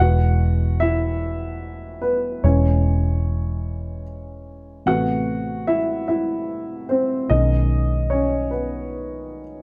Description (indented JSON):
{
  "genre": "six-eight pop ballad",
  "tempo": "49 BPM (dotted quarters)",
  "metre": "6/8",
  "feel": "straight",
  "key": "E major",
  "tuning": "A4 = 440 Hz",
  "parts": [
    { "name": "warm upright piano", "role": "accompaniment", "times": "0.0-9.6 s", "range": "C3 to F#5", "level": "-25 LUFS", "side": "equal", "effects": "none" },
    { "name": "vintage muted fingered electric bass", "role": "bass", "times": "0.0-9.6 s", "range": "E1 to B1", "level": "-23 LUFS", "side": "equal", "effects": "none" }
  ],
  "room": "light reverb",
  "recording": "dark, warm production",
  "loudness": "-21 LUFS",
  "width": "mono",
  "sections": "0.0-9.6 A section",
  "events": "upright piano solo 0.0-9.6",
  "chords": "0.0 E; 2.4 C#m/E; 4.9 Amadd9; 7.3 B6",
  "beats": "1.22 | 2.44 3.65 | 4.87 6.08 | 7.30 8.53"
}